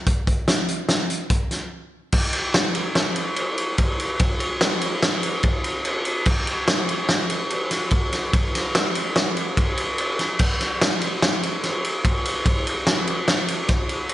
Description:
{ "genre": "rock", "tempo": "145 BPM", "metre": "5/4", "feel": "straight", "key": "none", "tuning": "none", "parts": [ { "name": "loose indie drum kit", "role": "drums", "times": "0.1-14.1 s", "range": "crash cymbal, hi-hat, kick drum, ride cymbal, snare drum", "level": "-20 LUFS", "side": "equal", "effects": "none" } ], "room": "moderate scoring stage reverb, RT60 1.5 s", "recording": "nothing above 10.8 kHz", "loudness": "-20 LUFS", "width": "side -14 dB against mid", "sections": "0.0-2.1 A section; 2.1-14.1 B section", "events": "break 1.7-2.1", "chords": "none" }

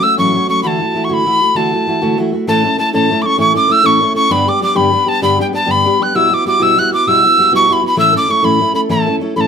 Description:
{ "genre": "celtic folk, Celtic slide", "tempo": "131 BPM (dotted quarters)", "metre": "12/8", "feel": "straight", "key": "unclear", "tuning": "A4 = 441 Hz", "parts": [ { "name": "breathy bright tin whistle", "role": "melody", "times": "0.0-9.5 s", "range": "G5 to F#6", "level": "-12 LUFS", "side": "equal", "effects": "none" }, { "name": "fingerpicked steel-string acoustic guitar", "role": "accompaniment", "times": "0.0-9.5 s", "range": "G2 to A4", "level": "-15 LUFS", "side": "equal", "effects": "none" } ], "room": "moderate studio reverb, RT60 0.7 s", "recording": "none", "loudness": "-10 LUFS", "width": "side -7 dB against mid", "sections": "0.0-2.5 A section; 2.5-9.5 A section", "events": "none", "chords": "0.0 A6; 0.6 Dadd9; 2.5 A; 4.3 G; 6.1 Emadd9/B; 8.0 A" }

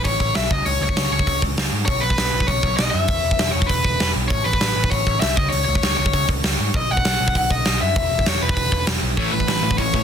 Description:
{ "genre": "punk rock", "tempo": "197 BPM", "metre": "4/4", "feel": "straight", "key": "unclear", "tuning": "A4 = 441 Hz", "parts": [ { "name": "overdriven electric guitar", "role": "melody", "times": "0.0-10.0 s", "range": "B4 to F#5", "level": "-22 LUFS", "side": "left 2 dB", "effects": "tape echo" }, { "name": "big rock drum kit", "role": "drums", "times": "0.0-10.0 s", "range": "hi-hat, kick drum, snare drum", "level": "-21 LUFS", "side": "right 1 dB", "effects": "none" }, { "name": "overdriven picked electric bass", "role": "bass", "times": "0.1-10.0 s", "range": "E1 to G#2", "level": "-24 LUFS", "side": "equal", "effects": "none" }, { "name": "distorted electric guitar", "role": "riff", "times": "9.2-10.0 s", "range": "A2 to A3", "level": "-25 LUFS", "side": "right 15 dB", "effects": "distortion" }, { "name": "sludgy distorted guitar", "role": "riff", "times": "9.2-10.0 s", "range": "A2 to A3", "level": "-25 LUFS", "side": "left 16 dB", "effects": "overdrive" } ], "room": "light reverb", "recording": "dense, heavily limited modern master", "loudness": "-17 LUFS", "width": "side -8 dB against mid", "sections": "0.0-10.0 A section", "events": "none", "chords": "0.0 A; 0.5 C#5; 1.9 B5; 3.1 E5; 4.3 A; 5.4 C#5; 6.7 B; 8.0 E5; 9.2 A" }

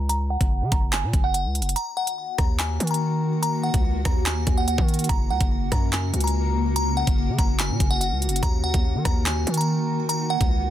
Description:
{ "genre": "hip hop, drill", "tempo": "144 BPM", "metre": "4/4", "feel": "half-time", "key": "Eb minor", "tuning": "A4 = 441 Hz", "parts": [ { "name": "delicate synth tine bell", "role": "melody", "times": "0.0-10.7 s", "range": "Gb5 to Bb5", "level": "-28 LUFS", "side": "equal", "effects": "chorus, phaser, low-pass filter, ping-pong delay" }, { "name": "distorted 808-style bass", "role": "bass", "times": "0.0-10.7 s", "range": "Gb1 to Eb3", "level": "-25 LUFS", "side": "equal", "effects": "distortion" }, { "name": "drill drum kit", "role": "drums", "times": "0.1-10.5 s", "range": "handclaps, hi-hat, kick drum, rim click", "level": "-23 LUFS", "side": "equal", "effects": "none" }, { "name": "granular cloud pad", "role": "sustained chords", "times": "2.4-10.7 s", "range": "Db3 to Gb4", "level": "-29 LUFS", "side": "left 2 dB", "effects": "built-in reverb" } ], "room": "little or no reverb", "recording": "dense, heavily limited modern master", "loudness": "-20 LUFS", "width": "side -12 dB against mid", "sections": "0.0-10.7 A section", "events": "filter sweep on synth bell 0.0-1.8; break 1.8-2.2", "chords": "0.0 Gb5; 1.8 Ebm; 5.1 Gb; 8.4 Ebm" }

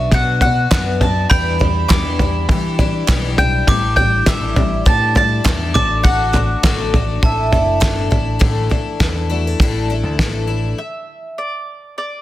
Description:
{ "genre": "indie folk with a building arrangement", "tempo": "101 BPM", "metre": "4/4", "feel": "straight", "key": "unclear", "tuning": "A4 = 440 Hz", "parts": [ { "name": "mandolin", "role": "melody", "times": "0.0-12.2 s", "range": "D5 to D6", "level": "-20 LUFS", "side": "right 1 dB", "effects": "none" }, { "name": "glockenspiel with hard plastic mallets", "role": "second line", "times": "0.0-8.1 s", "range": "A5 to D6", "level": "-25 LUFS", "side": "right 2 dB", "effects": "none" }, { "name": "picked twelve-string acoustic guitar", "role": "accompaniment", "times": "0.0-10.8 s", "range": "E2 to F#4", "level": "-23 LUFS", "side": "left 7 dB", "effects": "none" }, { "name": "picked electric bass", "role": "bass", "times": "0.0-10.7 s", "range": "F#1 to E3", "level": "-20 LUFS", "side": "equal", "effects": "none" }, { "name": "cloth-damped thuddy drum kit", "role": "drums", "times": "0.1-10.3 s", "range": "kick drum, snare drum, toms", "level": "-16 LUFS", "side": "equal", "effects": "none" }, { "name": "group handclap", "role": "percussion", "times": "0.7-8.0 s", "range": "none", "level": "-25 LUFS", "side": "right 6 dB", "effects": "none" }, { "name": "fingerpicked steel-string acoustic guitar", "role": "accompaniment", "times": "8.4-10.8 s", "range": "A2 to A4", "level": "-26 LUFS", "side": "left 1 dB", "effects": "none" } ], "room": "little or no reverb", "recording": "dense, heavily limited modern master", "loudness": "-14 LUFS", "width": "side -14 dB against mid", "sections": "0.0-8.4 A section; 8.4-10.8 B section; 10.8-12.2 C section", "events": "none", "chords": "0.0 Bm; 1.3 Em7; 3.7 A7sus4; 5.7 D/A; 7.2 Asus4; 10.8 N.C." }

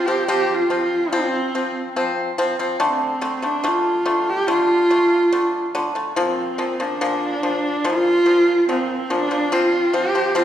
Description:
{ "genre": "mongolian traditional, Mongolian folk", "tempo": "71 BPM", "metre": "4/4", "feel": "straight", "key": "F zhi mode", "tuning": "A4 = 441 Hz", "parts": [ { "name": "clear horsehead fiddle", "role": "melody", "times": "0.0-10.4 s", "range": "C4 to G4", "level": "-19 LUFS", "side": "right 1 dB", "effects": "none" }, { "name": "pipa", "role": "arpeggios", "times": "0.0-10.4 s", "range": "Bb2 to C4", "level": "-21 LUFS", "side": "left 1 dB", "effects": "none" } ], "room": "wet recital hall reverb, RT60 1.6 s", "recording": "recorded in a church or concert hall", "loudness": "-17 LUFS", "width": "side -10 dB against mid", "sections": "0.0-9.5 A section", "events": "none", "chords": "0.0 F5; 2.8 D5; 6.2 Bb; 9.5 F5" }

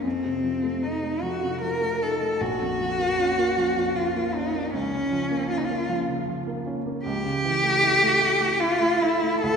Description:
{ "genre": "classical, romantic duo for cello and grand piano", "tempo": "77 BPM", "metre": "3/4", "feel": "rubato", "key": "Bb minor", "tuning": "A4 = 441 Hz", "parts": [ { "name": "rich cello", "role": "melody", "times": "0.0-9.6 s", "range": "C4 to Bb4", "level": "-22 LUFS", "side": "equal", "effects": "none" }, { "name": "warm grand piano", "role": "accompaniment", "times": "0.0-9.6 s", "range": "Bb1 to E4", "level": "-28 LUFS", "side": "right 1 dB", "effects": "none" } ], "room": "wet church reverb, RT60 2.6 s", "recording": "recorded in a church or concert hall", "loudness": "-22 LUFS", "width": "side -6 dB against mid", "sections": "0.0-9.6 A section", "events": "none", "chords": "0.0 F7; 2.4 Bbm; 4.7 Bbm/Db; 7.1 A7/C#" }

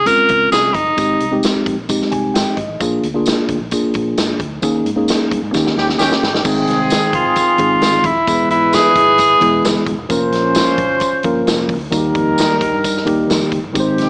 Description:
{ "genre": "uptempo 1960s-style soul", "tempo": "132 BPM", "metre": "4/4", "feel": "straight", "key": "Ab major", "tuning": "A4 = 440 Hz", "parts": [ { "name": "warm tenor saxophone", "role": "melody", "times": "0.0-1.4, 7.2-9.9 s", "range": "Eb4 to Bb4", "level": "-12 LUFS", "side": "equal", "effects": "none" }, { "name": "vintage muted fingered electric bass", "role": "bass", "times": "0.0-14.1 s", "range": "Eb1 to Eb3", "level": "-28 LUFS", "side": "equal", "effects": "none" }, { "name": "mellow tine electric piano", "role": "accompaniment", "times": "0.1-14.1 s", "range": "Eb3 to Ab5", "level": "-17 LUFS", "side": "equal", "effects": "none" }, { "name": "swinging big-band drum kit", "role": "drums", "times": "0.1-14.1 s", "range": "crash cymbal, hi-hat, kick drum, snare drum", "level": "-21 LUFS", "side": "equal", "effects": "none" }, { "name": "tambourine", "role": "percussion", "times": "0.1-13.9 s", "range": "none", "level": "-26 LUFS", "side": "equal", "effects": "none" }, { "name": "mellow horn section", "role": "second line", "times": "5.8-14.1 s", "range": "Eb3 to C5", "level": "-18 LUFS", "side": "equal", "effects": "tape echo" } ], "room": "light reverb", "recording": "vinyl crackle, small speaker sound", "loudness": "-12 LUFS", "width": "side -33 dB against mid", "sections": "0.0-6.5 A section; 6.5-14.1 B section", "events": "tine electric piano fill 1.9-2.8; band accent 4.6-6.5; drum fill 5.5-6.5", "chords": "0.0 Dbmaj7; 1.0 Abmaj7; 2.8 Bb7; 4.6 Eb7sus4; 5.5 Eb7; 6.5 Ab; 8.3 E; 10.1 Bbm/F; 11.9 Eb" }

